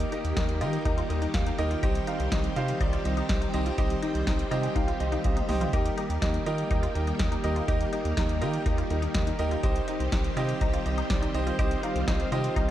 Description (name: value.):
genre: synth-pop.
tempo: 123 BPM.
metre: 4/4.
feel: straight.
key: unclear.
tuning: A4 = 440 Hz.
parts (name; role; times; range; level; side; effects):
warm grand piano; accompaniment; 0.0-12.7 s; Eb4 to C6; -31 LUFS; right 3 dB; none.
string machine, violins; sustained chords; 0.0-12.7 s; Eb3 to G4; -33 LUFS; left 1 dB; ensemble chorus.
resonant blip pluck; arpeggios; 0.0-12.7 s; Eb4 to G4; -37 LUFS; left 4 dB; phaser, analog delay.
round analog bass; bass; 0.0-12.7 s; C2 to Eb3; -30 LUFS; equal; none.
electro analog drum machine; drums; 0.0-12.7 s; hi-hat, kick drum, snare drum, toms; -30 LUFS; equal; gated reverb.
room: light reverb, digital ambience.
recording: none.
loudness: -25 LUFS.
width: side -12 dB against mid.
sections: 0.0-12.7 A section.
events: grand piano fill 4.3-5.7; drum fill 5.2-5.7.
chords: 0.0 Eb; 1.8 Cm; 5.7 Eb; 9.6 Cm.